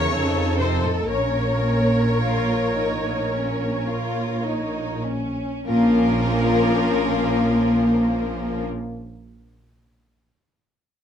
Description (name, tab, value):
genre	classical, slow romantic movement for string orchestra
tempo	48-64 BPM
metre	4/4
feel	rubato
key	Bb minor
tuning	A4 = 440 Hz
part	warm symphonic violin section	melody	0.0-8.6 s	A4 to C#5	-27 LUFS	left 4 dB	none
part	rich studio violin section	second line	0.0-8.6 s	Db4 to Db5	-27 LUFS	left 2 dB	none
part	warm symphonic viola section	accompaniment	0.0-8.6 s	F3 to Db5	-26 LUFS	left 1 dB	none
part	rich symphonic double bass section	bass	0.0-8.6 s	Bb1 to F2	-26 LUFS	right 2 dB	none
part	warm symphonic cello section	bass	0.0-8.6 s	A2 to Bb3	-25 LUFS	right 1 dB	none
room	moderate large studio reverb, RT60 0.8 s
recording	dark, warm production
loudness	-19 LUFS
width	side -8 dB against mid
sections	0.0-5.7 A section; 5.7-10.5 B section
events	slowing down 0.0-5.7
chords	0.1 F7; 1.1 Bbm